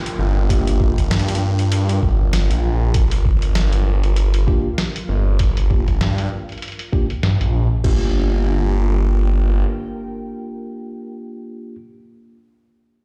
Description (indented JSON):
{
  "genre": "glitch hop",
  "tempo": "98 BPM",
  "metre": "4/4",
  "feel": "swing 57% on 16ths",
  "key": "G minor pentatonic",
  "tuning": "A4 = 438 Hz",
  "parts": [
    { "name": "downlifter", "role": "sound effects", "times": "0.0-2.9 s", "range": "none", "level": "-39 LUFS", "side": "equal", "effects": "none" },
    { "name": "airy breathy pad", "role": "texture", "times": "0.0-11.1 s", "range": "F4 to G5", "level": "-37 LUFS", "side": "equal", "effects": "chorus, sidechain pumping" },
    { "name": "boom bap sampler-style drum kit", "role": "drums", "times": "0.1-8.0 s", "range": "crash cymbal, hi-hat, snare drum", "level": "-29 LUFS", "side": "equal", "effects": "low-pass filter on hats, low-pass filter on perc, low-pass filter on snare, low-pass filter on toms, low-pass filter on cymbals" },
    { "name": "phased detuned saw bass", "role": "bass", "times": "0.2-9.6 s", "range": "G1 to G2", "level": "-19 LUFS", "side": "equal", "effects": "phaser" },
    { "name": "mellow tine electric piano", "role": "stabs", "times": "0.5-11.8 s", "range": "Bb3 to G4", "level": "-30 LUFS", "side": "equal", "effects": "sidechain pumping, low-pass filter, digital delay" },
    { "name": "electronic kick drum", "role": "drums", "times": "0.5-8.0 s", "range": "none", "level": "-20 LUFS", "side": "equal", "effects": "none" }
  ],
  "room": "little or no reverb",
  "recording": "played on a big sound system in a bare room, large studio reverb",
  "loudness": "-18 LUFS",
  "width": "mono",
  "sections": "0.0-7.8 A section; 7.8-10.3 B section",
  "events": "fade-out on analog synth pad 0.0-7.8; filter sweep on detuned saw bass 0.0-7.8; filter sweep on tine electric piano 0.0-7.8",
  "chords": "0.0 Gm7"
}